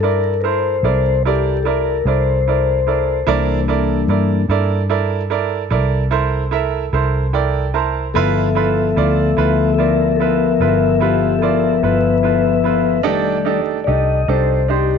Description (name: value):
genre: slow blues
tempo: 49 BPM (dotted quarters)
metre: 12/8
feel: straight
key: C mixolydian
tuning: A4 = 439 Hz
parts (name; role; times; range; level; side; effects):
- bright upright piano; accompaniment; 0.0-15.0 s; D4 to Bb5; -20 LUFS; right 11 dB; none
- mellow tonewheel organ; sustained chords; 0.0-15.0 s; Eb3 to E5; -17 LUFS; left 7 dB; slow rotary speaker
- vintage muted fingered electric bass; bass; 0.0-15.0 s; F1 to G2; -19 LUFS; equal; none
room: moderate echo chamber reverb, RT60 1.8 s, studio ambience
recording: 1960s-style stereo with parts hard left and right, vinyl crackle, nothing above 7.6 kHz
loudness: -14 LUFS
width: side -6 dB against mid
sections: 0.0-15.0 A section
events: tonewheel organ solo 0.0-15.0; upright piano fill 6.9-8.2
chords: 0.0 C13; 8.2 G13; 13.1 F13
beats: 0.83 2.05 | 3.27 4.50 5.72 6.94 | 8.16 9.39 10.61 11.84 | 13.06 14.29